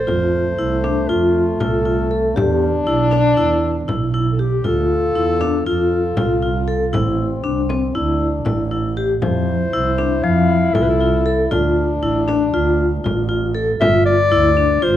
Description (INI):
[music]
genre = contemporary instrumental, chamber music in an uneven meter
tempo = 236 BPM (eighths)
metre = 9/8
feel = straight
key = unclear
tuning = A4 = 440 Hz
[part]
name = mellow clarinet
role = melody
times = 0.0-15.0 s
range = F4 to F5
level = -20 LUFS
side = left 2 dB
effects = none
[part]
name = mellow French horn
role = second line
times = 0.1-13.6 s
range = A3 to F4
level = -22 LUFS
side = left 3 dB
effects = none
[part]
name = vibraphone with medium mallets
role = arpeggios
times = 0.1-15.0 s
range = F3 to A4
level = -19 LUFS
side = left 2 dB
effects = none
[part]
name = muted double bass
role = bass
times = 0.1-15.0 s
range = G1 to F2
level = -21 LUFS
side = right 4 dB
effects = none
[part]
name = frame drum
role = percussion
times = 0.1-14.1 s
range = none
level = -25 LUFS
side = left 1 dB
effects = none
[sound]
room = moderate recital hall reverb, RT60 1.7 s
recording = dark, warm production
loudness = -15 LUFS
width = side -11 dB against mid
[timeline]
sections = 0.0-13.8 A section; 13.8-15.0 B section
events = none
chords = 0.1 F; 2.4 Em7; 4.7 Dmadd9; 5.7 F; 6.9 Am; 8.0 Dsus2; 9.2 Fmaj7; 11.5 Dm; 13.8 G5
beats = | 0.08 0.33 0.58 0.84 1.09 1.35 1.60 1.86 2.11 | 2.37 2.62 2.87 3.13 3.38 3.63 3.89 4.14 4.40 | 4.65 4.91 5.16 5.41 5.67 5.92 6.18 6.43 6.68 | 6.94 7.19 7.45 7.70 7.96 8.21 8.46 8.72 8.97 | 9.23 9.48 9.74 9.99 10.25 10.50 10.76 11.01 11.27 | 11.52 11.78 12.03 12.29 12.54 12.80 13.05 13.31 13.56 | 13.82 14.07 14.33 14.58 14.84